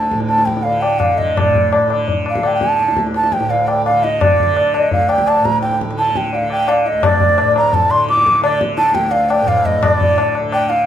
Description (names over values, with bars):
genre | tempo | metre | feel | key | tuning
indian classical, Hindustani | 170 BPM | 4/4 | straight | D raga bhairavi | A4 = 440 Hz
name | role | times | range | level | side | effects
breathy bansuri | melody | 0.0-10.9 s | D5 to D6 | -15 LUFS | right 1 dB | none
tanpura | drone | 0.0-10.9 s | D2 to D3 | -22 LUFS | right 2 dB | none
tabla | percussion | 0.0-10.8 s | none | -17 LUFS | left 3 dB | none
room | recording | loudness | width
moderate recital hall reverb, RT60 1.5 s | minimal, uncompressed stereo recording | -13 LUFS | side -10 dB against mid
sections
0.0-1.4 A section; 1.4-10.9 B section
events
speeding up 0.0-10.9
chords
none